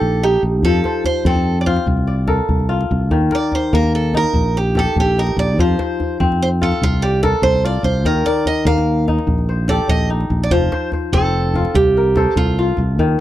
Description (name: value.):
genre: west african traditional, West African string and xylophone music.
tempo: 97 BPM (dotted quarters).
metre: 12/8.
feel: straight.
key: F mixolydian.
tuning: A4 = 439 Hz.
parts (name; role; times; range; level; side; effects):
picked acoustic archtop guitar; melody; 0.0-12.8 s; F4 to F5; -19 LUFS; right 4 dB; none.
kora; arpeggios; 0.0-13.2 s; Eb3 to D5; -20 LUFS; left 3 dB; none.
fingered electric bass; bass; 0.0-13.2 s; F1 to F2; -18 LUFS; equal; none.
djembe; percussion; 0.6-13.2 s; none; -22 LUFS; equal; none.
room: little or no reverb.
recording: dry, close 1970s-style studio recording.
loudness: -14 LUFS.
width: side -13 dB against mid.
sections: 0.0-10.5 A section; 10.5-13.2 B section.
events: steel-string acoustic guitar solo 0.0-10.5.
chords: 0.0 Eb; 0.6 F; 3.1 Eb; 5.6 F; 8.0 Eb; 10.5 F.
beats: 0.01 | 0.63 1.25 1.87 2.49 | 3.11 3.73 4.34 4.96 | 5.58 6.20 6.81 7.43 | 8.04 8.66 9.28 9.90 | 10.51 11.13 11.75 12.36 | 12.98.